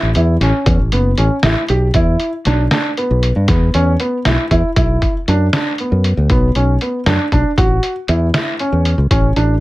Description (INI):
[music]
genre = progressive instrumental, band music in an uneven meter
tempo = 234 BPM (eighths)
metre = 11/8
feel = straight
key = E dorian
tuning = A4 = 441 Hz
[part]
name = dark grand piano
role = arpeggios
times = 0.0-9.5 s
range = B3 to G4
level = -18 LUFS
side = right 1 dB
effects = none
[part]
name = fingered electric bass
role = bass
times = 0.0-9.6 s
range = F#1 to G2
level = -14 LUFS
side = equal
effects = none
[part]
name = lo-fi sampler-style drum kit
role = drums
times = 0.1-9.5 s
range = hi-hat, kick drum, snare drum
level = -17 LUFS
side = equal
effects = none
[sound]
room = light reverb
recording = none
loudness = -12 LUFS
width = side -18 dB against mid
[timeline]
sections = 0.0-1.9 A section; 1.9-9.6 B section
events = none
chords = 0.0 Aadd9; 1.9 E5; 4.8 Bm; 7.6 A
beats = 0.16 0.41 0.67 0.93 1.18 1.44 1.69 | 1.95 2.21 2.46 2.72 2.97 3.23 3.48 3.74 4.00 4.25 4.51 | 4.76 5.02 5.28 5.53 5.79 6.04 6.30 6.55 6.81 7.07 7.32 | 7.58 7.83 8.09 8.35 8.60 8.86 9.11 9.37